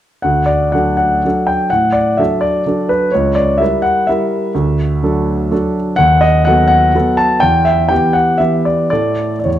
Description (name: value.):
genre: classical, piano waltz.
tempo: 111-133 BPM.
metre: 3/4.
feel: rubato.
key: D major.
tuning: A4 = 439 Hz.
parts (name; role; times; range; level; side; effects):
warm grand piano; solo; 0.2-9.6 s; C#2 to A5; -11 LUFS; equal; none.
room: moderate recital hall reverb, RT60 1.7 s.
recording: close, detailed microphones.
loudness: -11 LUFS.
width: side -11 dB against mid.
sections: 0.2-9.6 A section.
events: none.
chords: 0.2 D; 3.1 C#dim7; 4.6 D; 6.0 B7/D#; 7.4 Em; 8.9 A.